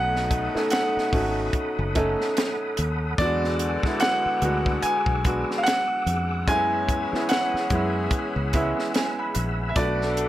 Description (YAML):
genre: R&B, neo-soul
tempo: 73 BPM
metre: 4/4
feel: swing 58% on 16ths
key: B dorian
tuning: A4 = 439 Hz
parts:
  - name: clear concert grand piano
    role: melody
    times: 0.0-10.3 s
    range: D5 to G#5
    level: -26 LUFS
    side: equal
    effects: none
  - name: clear upright piano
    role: accompaniment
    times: 0.0-10.3 s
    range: F#3 to B5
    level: -28 LUFS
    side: right 2 dB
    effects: none
  - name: tonewheel organ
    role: sustained chords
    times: 0.0-10.3 s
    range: A3 to E6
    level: -33 LUFS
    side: equal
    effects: slow rotary speaker, chorus vibrato
  - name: warm saxophone section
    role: stabs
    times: 0.0-10.3 s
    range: B2 to A4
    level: -32 LUFS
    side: left 4 dB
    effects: none
  - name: fingered electric bass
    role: bass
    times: 0.0-10.3 s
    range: F#1 to F#2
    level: -28 LUFS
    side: equal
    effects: none
  - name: compact cocktail drum kit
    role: drums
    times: 0.2-10.3 s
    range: hi-hat, kick drum, snare drum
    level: -27 LUFS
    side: equal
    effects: none
room: moderate studio reverb, RT60 0.5 s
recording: none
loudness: -21 LUFS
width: side -14 dB against mid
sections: 0.0-10.3 A section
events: upright piano fill 8.1-9.8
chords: 0.0 B7; 3.2 E9; 6.5 F#9sus4; 9.8 Bm7